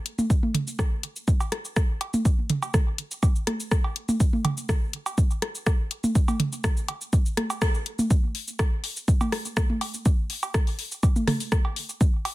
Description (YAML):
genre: techno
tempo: 123 BPM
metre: 4/4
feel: straight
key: none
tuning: none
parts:
  - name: house drum kit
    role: drums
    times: 0.1-12.3 s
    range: cabasa, hi-hat, rim click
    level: -30 LUFS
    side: left 2 dB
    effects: overdrive
  - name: electronic toms and cowbell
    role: percussion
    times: 0.2-12.3 s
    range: none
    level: -28 LUFS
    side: right 1 dB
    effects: digital delay
  - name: electronic kick drum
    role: drums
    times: 0.3-12.1 s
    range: none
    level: -22 LUFS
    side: equal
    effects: overdrive
room: light reverb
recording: dense, heavily limited modern master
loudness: -23 LUFS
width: side -18 dB against mid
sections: 0.0-8.1 A section; 8.1-12.3 B section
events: band accent 7.6; drop 8.1-12.3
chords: none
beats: | 0.30 0.79 1.28 1.76 | 2.25 2.74 3.23 3.71 | 4.20 4.69 5.18 5.67 | 6.15 6.64 7.13 7.62 | 8.11 8.59 9.08 9.57 | 10.06 10.54 11.03 11.52 | 12.01